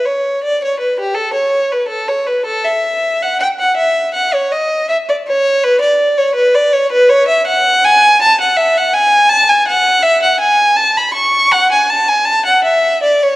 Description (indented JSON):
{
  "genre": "classical, baroque-style suite movement for unaccompanied violin",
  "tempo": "81 BPM",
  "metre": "3/4",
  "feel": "rubato",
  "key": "unclear",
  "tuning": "A4 = 440 Hz",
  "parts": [
    { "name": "rich violin", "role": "solo", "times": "0.0-13.4 s", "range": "G4 to C#6", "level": "-10 LUFS", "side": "equal", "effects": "none" }
  ],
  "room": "wet recital hall reverb, RT60 1.6 s",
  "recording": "worn, warbling old tape, cassette tape, warbly pitch drift",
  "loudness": "-10 LUFS",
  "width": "side -18 dB against mid",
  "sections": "0.0-13.4 A section",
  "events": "none",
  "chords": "none"
}